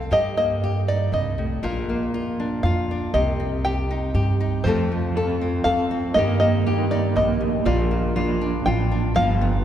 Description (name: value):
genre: acoustic folk duo or small band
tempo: 119 BPM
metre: 3/4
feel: straight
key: unclear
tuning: A4 = 441 Hz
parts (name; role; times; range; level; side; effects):
- open-back banjo; melody; 0.0-9.6 s; Bb4 to G5; -25 LUFS; equal; none
- nylon-string guitar; accompaniment; 0.0-9.6 s; F2 to A4; -26 LUFS; left 2 dB; none
- upright bass; bass; 0.0-9.6 s; G1 to G2; -24 LUFS; right 1 dB; none
- electric guitar at the edge of break-up; arpeggios; 4.7-9.6 s; F3 to A4; -25 LUFS; right 4 dB; tremolo
room: wet cathedral reverb, RT60 4.5 s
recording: recorded in a church or concert hall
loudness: -20 LUFS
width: side -10 dB against mid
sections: 0.0-9.6 A section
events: none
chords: 0.1 Eb/G; 1.6 Bb; 3.1 Cm; 4.7 F; 6.2 Eb/G; 7.7 Bb